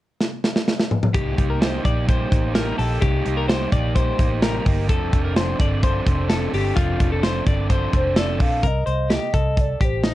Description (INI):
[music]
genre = jangly indie pop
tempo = 128 BPM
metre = 4/4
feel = straight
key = C dorian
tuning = A4 = 441 Hz
[part]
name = modern studio drum kit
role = drums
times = 0.2-10.1 s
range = hi-hat, kick drum, snare drum, toms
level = -20 LUFS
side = equal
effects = none
[part]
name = crunchy overdriven guitar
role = accompaniment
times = 1.1-8.6 s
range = C3 to A4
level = -27 LUFS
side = right 5 dB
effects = none
[part]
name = twelve-string electric guitar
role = arpeggios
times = 1.1-10.1 s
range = Eb4 to D5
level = -27 LUFS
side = left 6 dB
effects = none
[part]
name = vintage muted fingered electric bass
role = bass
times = 1.1-10.1 s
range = F1 to C2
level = -24 LUFS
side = equal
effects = none
[part]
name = hollow clarinet-like synth lead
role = melody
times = 8.0-10.1 s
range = C5 to F5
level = -25 LUFS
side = right 1 dB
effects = chorus
[sound]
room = light reverb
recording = none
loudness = -18 LUFS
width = side -15 dB against mid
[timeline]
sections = 0.0-1.1 A section; 1.1-8.6 B section; 8.6-10.1 C section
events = drum fill 0.2-1.1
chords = 0.0 N.C.; 1.1 Cm7; 4.9 F6; 8.6 Cm7